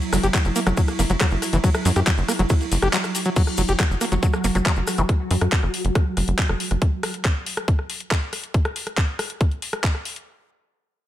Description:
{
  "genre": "psychedelic trance",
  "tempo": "139 BPM",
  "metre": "4/4",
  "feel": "straight",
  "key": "unclear",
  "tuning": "A4 = 439 Hz",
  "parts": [
    { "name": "pulsing gated texture", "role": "sustained chords", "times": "0.0-6.9 s", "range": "F#3 to F#4", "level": "-28 LUFS", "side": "right 2 dB", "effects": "chorus, built-in reverb, sidechain pumping" },
    { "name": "garage drum kit", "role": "drums", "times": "0.0-10.2 s", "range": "crash cymbal, handclaps, hi-hat, ride cymbal, rim click", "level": "-26 LUFS", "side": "left 1 dB", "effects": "studio reverb" },
    { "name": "maracas", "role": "percussion", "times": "0.0-5.1 s", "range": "none", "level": "-33 LUFS", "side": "left 2 dB", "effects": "none" },
    { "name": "overdriven acid bass", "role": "riff", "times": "0.1-5.0 s", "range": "E3 to G4", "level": "-25 LUFS", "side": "left 1 dB", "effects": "auto-pan, sidechain pumping, digital delay" },
    { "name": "tight sequencer bass", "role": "bass", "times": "0.1-6.8 s", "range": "F#1 to F#2", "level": "-22 LUFS", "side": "equal", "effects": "none" },
    { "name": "electronic kick drum", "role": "drums", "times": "0.3-9.9 s", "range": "none", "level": "-20 LUFS", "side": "equal", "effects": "studio reverb" }
  ],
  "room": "light reverb, digital ambience",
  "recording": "none",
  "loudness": "-19 LUFS",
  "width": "side -13 dB against mid",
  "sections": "0.0-3.4 A section; 3.4-10.3 B section",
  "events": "drop 0.0-3.4; break 2.9-3.4; filter sweep on acid bass 3.4-5.1; filter sweep on synth texture 3.4-6.8",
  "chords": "0.0 F#5",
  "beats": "0.34 0.77 1.21 | 1.64 2.07 2.50 2.93 | 3.36 3.79 4.23 4.66 | 5.09 5.52 5.95 6.38 | 6.82 7.25 7.68 8.11 | 8.54 8.97 9.41 9.84"
}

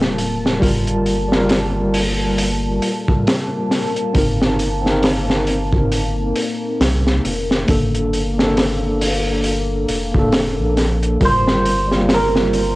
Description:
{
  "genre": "trip hop",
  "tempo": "68 BPM",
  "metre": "4/4",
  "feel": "swing 58% on 16ths",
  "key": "G minor",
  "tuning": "A4 = 438 Hz",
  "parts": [
    { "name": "mellow tine electric piano", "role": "accompaniment", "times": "0.0-12.8 s", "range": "G3 to Bb4", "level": "-21 LUFS", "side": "equal", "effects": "tremolo, cassette tape, tape echo" },
    { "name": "deep dark ambient pad", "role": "sustained chords", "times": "0.0-12.8 s", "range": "Bb3 to A5", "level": "-26 LUFS", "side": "left 2 dB", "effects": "chorus, built-in reverb, cassette tape" },
    { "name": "round analog bass", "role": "bass", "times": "0.0-12.8 s", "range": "D1 to C2", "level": "-22 LUFS", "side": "equal", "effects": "none" },
    { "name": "crunchy breakbeat drum kit", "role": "drums", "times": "0.0-12.8 s", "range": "hi-hat, kick drum, snare drum", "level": "-19 LUFS", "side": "equal", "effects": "none" },
    { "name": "cimbalom", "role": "melody", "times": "11.3-12.8 s", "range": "Bb4 to C5", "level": "-17 LUFS", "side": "right 2 dB", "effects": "cassette tape" }
  ],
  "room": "light reverb",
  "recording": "home recording on cassette",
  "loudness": "-15 LUFS",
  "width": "side -20 dB against mid",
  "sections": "0.0-12.8 A section",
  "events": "none",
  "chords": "0.0 Gm7; 4.1 Cm7/G; 7.7 Bbmaj7/G; 11.2 Gm7",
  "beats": "| 0.62 1.50 2.38 3.27 | 4.15 5.03 5.91 6.80 | 7.68 8.56 9.44 10.32 | 11.21 12.09"
}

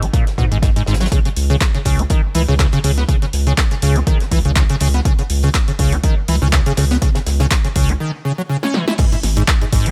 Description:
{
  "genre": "acid house",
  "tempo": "122 BPM",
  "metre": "4/4",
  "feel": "swing 55% on 16ths",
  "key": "unclear",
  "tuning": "A4 = 440 Hz",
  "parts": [
    { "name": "liquid acid bass", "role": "riff", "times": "0.0-9.9 s", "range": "G#2 to E4", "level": "-21 LUFS", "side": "equal", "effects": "analog chorus, digital delay" },
    { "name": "saturated sub bass", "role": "bass", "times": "0.0-9.9 s", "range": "G#1 to G#2", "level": "-20 LUFS", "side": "equal", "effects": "sidechain pumping" },
    { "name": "punchy analog drum machine", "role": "drums", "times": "0.0-9.9 s", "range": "crash cymbal, handclaps, hi-hat, snare drum", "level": "-25 LUFS", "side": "equal", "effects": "overdrive, studio reverb" },
    { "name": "electronic kick drum", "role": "drums", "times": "0.1-9.8 s", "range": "none", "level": "-18 LUFS", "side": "equal", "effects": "overdrive, studio reverb" },
    { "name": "warm soul drum kit", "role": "drums", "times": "0.1-9.9 s", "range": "hi-hat, snare drum", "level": "-34 LUFS", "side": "equal", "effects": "none" }
  ],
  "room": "small room ambience",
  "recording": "none",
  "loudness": "-16 LUFS",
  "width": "mono",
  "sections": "0.0-9.0 A section",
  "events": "break 8.0-9.0; drum fill 8.6-9.0",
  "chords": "none",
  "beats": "0.14 0.63 | 1.12 1.61 2.10 2.59 | 3.09 3.58 4.07 4.56 | 5.05 5.54 6.04 6.53 | 7.02 7.51 8.00 8.50 | 8.99 9.48"
}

